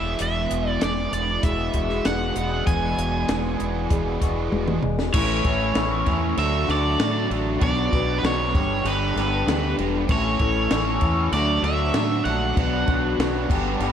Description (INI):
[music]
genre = indie rock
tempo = 97 BPM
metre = 4/4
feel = straight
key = A major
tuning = A4 = 440 Hz
[part]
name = cranked stack guitar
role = melody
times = 0.0-13.9 s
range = B4 to G#5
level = -26 LUFS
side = right 2 dB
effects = overdrive, slapback echo
[part]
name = mellow tonewheel organ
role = sustained chords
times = 0.0-13.9 s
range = G#3 to B5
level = -37 LUFS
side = left 1 dB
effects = none
[part]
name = electric guitar through a small old amp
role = riff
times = 0.0-13.9 s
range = E2 to A4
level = -28 LUFS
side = left 8 dB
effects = phaser, slapback echo
[part]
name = fuzz guitar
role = riff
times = 0.0-13.9 s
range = G2 to E4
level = -28 LUFS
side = right 7 dB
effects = distortion, analog chorus, slapback echo
[part]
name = deep dub fingered electric bass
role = bass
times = 0.0-13.9 s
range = E1 to A2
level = -27 LUFS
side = equal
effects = none
[part]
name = compact cocktail drum kit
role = drums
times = 0.2-13.9 s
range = crash cymbal, hi-hat, kick drum, snare drum, toms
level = -26 LUFS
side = equal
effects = none
[sound]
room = light reverb, studio reverb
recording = none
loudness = -20 LUFS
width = side -8 dB against mid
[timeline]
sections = 0.0-5.1 A section; 5.1-13.9 B section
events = drum fill 4.5-5.1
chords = 0.0 Eadd9; 5.1 A; 6.4 D; 7.6 Bm; 8.5 G; 10.1 A; 11.3 D; 12.6 Bm